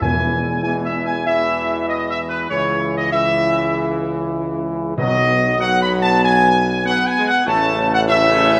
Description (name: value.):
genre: classical.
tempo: 97 BPM.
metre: 4/4.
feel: straight.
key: E major.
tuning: A4 = 443 Hz.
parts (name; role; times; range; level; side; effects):
dark trumpet section; melody; 0.0-8.6 s; B4 to B5; -19 LUFS; equal; none.
clear trombone section; sustained chords; 0.0-8.6 s; B2 to A3; -28 LUFS; equal; none.
mellow French horn section; sustained chords; 0.0-8.6 s; G#3 to E4; -28 LUFS; equal; none.
warm tuba; bass; 0.0-8.6 s; A1 to E2; -25 LUFS; equal; none.
timpani; percussion; 0.0-0.9, 5.0-5.9 s; E2 to B2; -27 LUFS; equal; none.
room: wet scoring stage reverb, RT60 2.0 s.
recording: none.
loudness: -18 LUFS.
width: mono.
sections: 0.0-8.6 A section.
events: none.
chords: 0.0 E; 2.5 C#m; 5.0 B; 7.5 A.